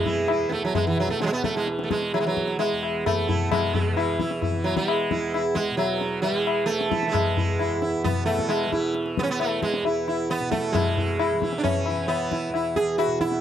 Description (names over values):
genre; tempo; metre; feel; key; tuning
indian classical, Hindustani; 132 BPM; 4/4; straight; E raga khamaj; A4 = 441 Hz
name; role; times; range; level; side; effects
sitar; melody; 0.0-13.4 s; E3 to G#4; -24 LUFS; right 4 dB; none
tanpura; drone; 0.0-13.4 s; E2 to E3; -32 LUFS; equal; none
tabla; percussion; 0.1-13.4 s; none; -26 LUFS; left 6 dB; none
room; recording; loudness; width
light reverb; dry, close 1970s-style studio recording; -22 LUFS; side -10 dB against mid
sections
0.0-10.7 A section; 10.7-13.4 B section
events
speeding up 0.0-13.4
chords
none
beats
0.29 0.75 1.21 | 1.67 2.13 2.59 3.05 | 3.50 3.96 4.42 4.87 | 5.33 5.78 6.24 6.69 | 7.14 7.59 8.05 8.50 | 8.95 9.40 9.85 10.30 | 10.74 11.19 11.64 12.08 | 12.53 12.97